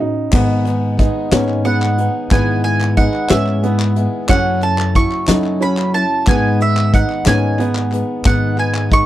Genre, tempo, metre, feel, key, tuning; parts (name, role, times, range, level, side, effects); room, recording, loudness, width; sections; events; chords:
indie folk with a building arrangement; 61 BPM (dotted quarters); 6/8; straight; A4 = 439 Hz
warm upright piano; arpeggios; 0.0-9.1 s; B3 to E4; -21 LUFS; right 6 dB
felt-muted upright piano; accompaniment; 0.3-9.1 s; F#1 to C#5; -24 LUFS; left 7 dB
picked swing-style acoustic guitar; accompaniment; 0.3-9.1 s; G#2 to A4; -24 LUFS; left 6 dB
upright bass; bass; 0.3-9.0 s; F#2 to F#3; -18 LUFS; equal
soft brush drum kit; drums; 0.3-9.1 s; crash cymbal, hi-hat, kick drum, snare drum; -15 LUFS; equal
group handclap; percussion; 0.3-8.9 s; -27 LUFS; left 3 dB
mandolin; melody; 1.6-9.1 s; E5 to C#6; -20 LUFS; right 2 dB
little or no reverb; dry, close 1970s-style studio recording; -13 LUFS; side -14 dB against mid
0.3-9.1 A section
break 0.0-0.3
0.3 G#m; 2.3 E/G#; 4.3 F#m7; 6.3 G#m